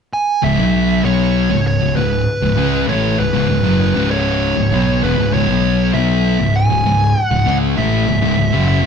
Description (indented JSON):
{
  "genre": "metal",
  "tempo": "98 BPM",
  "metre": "4/4",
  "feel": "straight",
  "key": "C# minor",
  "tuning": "A4 = 438 Hz",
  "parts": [
    { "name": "fuzz lead guitar", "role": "melody", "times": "0.1-8.9 s", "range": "B4 to G#5", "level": "-19 LUFS", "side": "right 1 dB", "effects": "distortion" },
    { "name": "thick fuzz guitar", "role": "riff", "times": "0.4-8.9 s", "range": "C#2 to C#4", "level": "-17 LUFS", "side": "left 7 dB", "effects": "distortion" },
    { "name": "thick fuzz guitar", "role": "riff", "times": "0.4-8.9 s", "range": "C#2 to C#4", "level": "-18 LUFS", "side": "right 6 dB", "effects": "distortion" },
    { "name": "fuzz picked electric bass", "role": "bass", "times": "0.4-8.9 s", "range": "C#1 to C#2", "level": "-21 LUFS", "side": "right 1 dB", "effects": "overdrive" }
  ],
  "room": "wet large studio reverb, RT60 1.3 s",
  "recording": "band playing live in one room, nothing above 11.0 kHz",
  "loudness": "-13 LUFS",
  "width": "side -6 dB against mid",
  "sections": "0.4-8.9 A section",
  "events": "none",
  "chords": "0.4 C#m",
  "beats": "| 0.43 1.04 1.65 2.27 | 2.88 3.49 4.10 4.71 | 5.33 5.94 6.55 7.16 | 7.77 8.38"
}